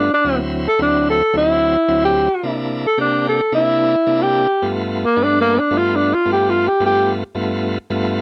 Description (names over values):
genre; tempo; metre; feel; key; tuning
blues; 110 BPM; 4/4; straight; G mixolydian; A4 = 440 Hz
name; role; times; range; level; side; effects
breathy tenor saxophone; melody; 0.0-7.1 s; Bb3 to A4; -17 LUFS; equal; slapback echo
bright tonewheel organ; accompaniment; 0.0-8.2 s; D2 to G4; -23 LUFS; equal; overdrive, fast rotary speaker
room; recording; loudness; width
little or no reverb; dry, close 1970s-style studio recording; -17 LUFS; mono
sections
0.0-8.2 A section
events
tenor saxophone solo 0.0-8.2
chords
0.1 D7; 2.3 C7; 4.5 G7